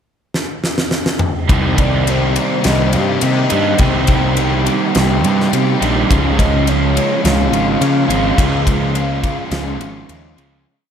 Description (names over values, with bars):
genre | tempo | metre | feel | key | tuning
rock, shoegaze and dream pop | 104 BPM | 4/4 | straight | C phrygian | A4 = 439 Hz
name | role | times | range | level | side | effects
huge arena drum kit | drums | 0.3-10.5 s | kick drum, ride cymbal, snare drum, toms | -19 LUFS | equal | none
twangy electric guitar | arpeggios | 1.5-10.7 s | Eb3 to D4 | -28 LUFS | right 7 dB | none
crunchy overdriven guitar | riff | 1.5-10.7 s | C3 to Eb4 | -19 LUFS | right 7 dB | reverse reverb
overdriven semi-hollow guitar | riff | 1.5-10.7 s | C3 to G4 | -20 LUFS | left 8 dB | wide subtle chorus
fuzz picked electric bass | bass | 1.5-10.6 s | Ab1 to Db3 | -17 LUFS | equal | overdrive
hollow clarinet-like synth lead | melody | 1.8-10.1 s | C5 to G5 | -23 LUFS | equal | chorus, phaser, analog delay
room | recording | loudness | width
moderate huge ambient reverb, RT60 7.6 s | dreamy mix soaked in reverb | -13 LUFS | side -8 dB against mid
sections
0.0-1.5 pickup bar; 1.5-10.7 A section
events
drum fill 0.3-1.5; fade-out 8.4-10.7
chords
0.0 N.C.; 1.5 Cm7; 6.1 Db6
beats
0.33 0.91 | 1.49 2.07 2.64 3.22 | 3.80 4.37 4.95 5.52 | 6.10 6.67 7.24 7.82 | 8.39 8.96 9.53 10.10